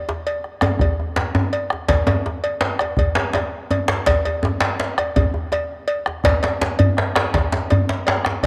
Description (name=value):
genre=west african traditional, West African drum ensemble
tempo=110 BPM (dotted quarters)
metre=12/8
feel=straight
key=none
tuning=none
part: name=djembe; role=percussion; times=0.1-8.5 s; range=none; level=-28 LUFS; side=equal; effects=none
part: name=cowbell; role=percussion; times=0.3-8.5 s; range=none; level=-25 LUFS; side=equal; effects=none
part: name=bombo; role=percussion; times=0.4-8.5 s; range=none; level=-25 LUFS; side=equal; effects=none
part: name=djembe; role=percussion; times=0.6-8.4 s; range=none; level=-22 LUFS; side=equal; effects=none
room=light reverb, small room ambience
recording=none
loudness=-20 LUFS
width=mono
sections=0.0-8.5 A section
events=none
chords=none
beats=0.26 0.81 1.35 | 1.90 2.44 2.98 3.53 | 4.08 4.62 5.16 5.71 | 6.25 6.80 7.34 7.89 | 8.43